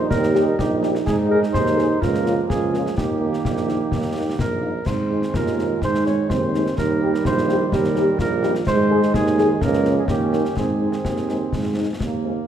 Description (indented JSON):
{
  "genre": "military-style march for wind band",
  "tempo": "126 BPM",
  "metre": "2/4",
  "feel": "straight",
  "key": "Ab major",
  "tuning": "A4 = 440 Hz",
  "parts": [
    { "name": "dark cornet", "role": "melody", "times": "0.0-12.2 s", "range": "G4 to Db5", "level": "-26 LUFS", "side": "right 2 dB", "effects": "none" },
    { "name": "mellow euphonium", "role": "second line", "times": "0.0-12.2 s", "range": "Bb3 to G4", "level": "-26 LUFS", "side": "right 5 dB", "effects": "none" },
    { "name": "clear trombone section", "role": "sustained chords", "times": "0.0-12.5 s", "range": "Eb3 to Eb4", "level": "-27 LUFS", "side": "right 2 dB", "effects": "none" },
    { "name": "warm tuba", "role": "bass", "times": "0.0-12.4 s", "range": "Bb1 to Ab2", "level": "-22 LUFS", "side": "right 2 dB", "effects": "none" },
    { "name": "concert snare drum, concert bass drum and clash cymbals", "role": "drums", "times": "0.1-12.2 s", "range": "none", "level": "-27 LUFS", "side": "left 2 dB", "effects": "none" },
    { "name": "dark French horn section", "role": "accompaniment", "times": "0.3-12.3 s", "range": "Ab3 to Ab4", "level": "-26 LUFS", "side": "left 5 dB", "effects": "none" }
  ],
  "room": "moderate concert hall reverb, RT60 2.0 s",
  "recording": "none",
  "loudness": "-18 LUFS",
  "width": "side -9 dB against mid",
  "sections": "0.0-12.5 A section",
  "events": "none",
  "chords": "0.0 Eb; 1.1 Ab; 2.0 Bbm/Db; 3.0 Eb; 4.9 Ab; 6.8 Eb; 8.7 Ab; 9.6 Bbm/Db; 10.1 Eb7; 10.6 Ab"
}